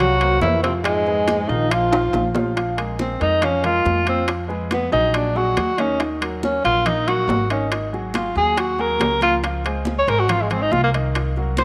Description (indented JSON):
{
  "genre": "Afro-Cuban jazz",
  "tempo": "140 BPM",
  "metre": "4/4",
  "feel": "straight",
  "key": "Bb minor",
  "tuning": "A4 = 441 Hz",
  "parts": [
    { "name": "mellow tenor saxophone", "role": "melody", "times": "0.0-11.6 s", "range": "Ab3 to Db5", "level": "-22 LUFS", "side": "equal", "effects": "slapback echo" },
    { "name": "breathy trombone", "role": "second line", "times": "0.0-2.4 s", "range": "Ab2 to Gb3", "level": "-29 LUFS", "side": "equal", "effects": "none" },
    { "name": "warm baby grand piano", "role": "accompaniment", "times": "0.0-11.6 s", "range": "Eb3 to G5", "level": "-29 LUFS", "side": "equal", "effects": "none" },
    { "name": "upright bass", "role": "bass", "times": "0.0-11.6 s", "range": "Ab1 to F2", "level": "-27 LUFS", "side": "equal", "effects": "none" },
    { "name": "congas", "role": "percussion", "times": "0.0-11.6 s", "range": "none", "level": "-33 LUFS", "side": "equal", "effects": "none" },
    { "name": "timbales", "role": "percussion", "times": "0.0-11.6 s", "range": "none", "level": "-30 LUFS", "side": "equal", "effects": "none" },
    { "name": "bongos", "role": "percussion", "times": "0.2-11.6 s", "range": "none", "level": "-33 LUFS", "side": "equal", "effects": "none" }
  ],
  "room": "moderate echo chamber reverb, RT60 2.4 s",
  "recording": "none",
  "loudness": "-20 LUFS",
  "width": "mono",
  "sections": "0.0-2.6 A section; 2.6-11.6 B section",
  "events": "drum fill 1.9-2.6; tenor saxophone solo 2.6-11.6",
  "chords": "0.0 C5; 0.9 Fdim; 1.7 Bb5; 4.3 Fdim; 5.1 Gb69/Bb; 6.0 Ebm; 7.7 Absus2; 9.4 Dbmaj9",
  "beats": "0.00 0.43 | 0.85 1.28 1.71 2.14 | 2.57 3.00 3.43 3.86 | 4.29 4.72 5.14 5.58 | 6.00 6.43 6.86 7.29 | 7.72 8.15 8.58 9.01 | 9.44 9.86 10.29 10.72 | 11.15 11.58"
}